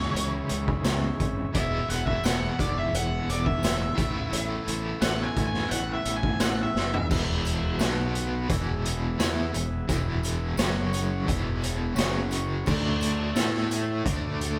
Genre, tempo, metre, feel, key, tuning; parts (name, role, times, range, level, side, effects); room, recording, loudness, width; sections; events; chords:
psychedelic rock; 86 BPM; 4/4; straight; E mixolydian; A4 = 440 Hz
octave-fuzz lead guitar; melody; 0.0-7.1 s; C#5 to G#5; -34 LUFS; equal; distortion
combo organ; sustained chords; 0.0-14.6 s; C#3 to F#5; -40 LUFS; equal; spring reverb
cranked stack guitar; riff; 0.0-14.6 s; E2 to A4; -33 LUFS; equal; overdrive, tremolo
fuzz fingered electric bass; bass; 0.0-14.6 s; E1 to A2; -33 LUFS; equal; overdrive
raw garage drum kit; drums; 0.2-14.6 s; crash cymbal, hi-hat, kick drum, snare drum, toms; -30 LUFS; equal
tambourine; percussion; 0.9-14.5 s; -48 LUFS; equal
light reverb; band playing live in one room; -27 LUFS; mono
0.0-7.1 A section; 7.1-14.6 B section
lead electric guitar solo 0.0-7.1; drum fill 6.8-7.1
0.0 C#m; 1.5 Eadd9; 4.0 Asus2; 7.1 E; 7.8 B5; 8.5 E; 10.6 F#5; 11.3 E; 12.0 F#5; 12.7 D5; 13.4 A5; 14.1 D5